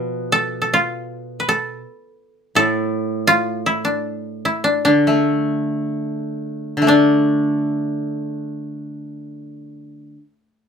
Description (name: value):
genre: japanese traditional, Japanese chamber music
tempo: 49-82 BPM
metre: 2/4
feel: rubato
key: D kumoi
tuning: A4 = 440 Hz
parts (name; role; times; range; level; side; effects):
- koto; melody; 0.0-10.1 s; D4 to B4; -18 LUFS; left 1 dB; none
- koto; accompaniment; 0.0-10.2 s; A2 to D4; -20 LUFS; equal; none
room: light reverb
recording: close, detailed microphones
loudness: -17 LUFS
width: side -6 dB against mid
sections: 0.0-6.9 A section; 6.9-10.7 B section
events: slowing down 3.3-6.9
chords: none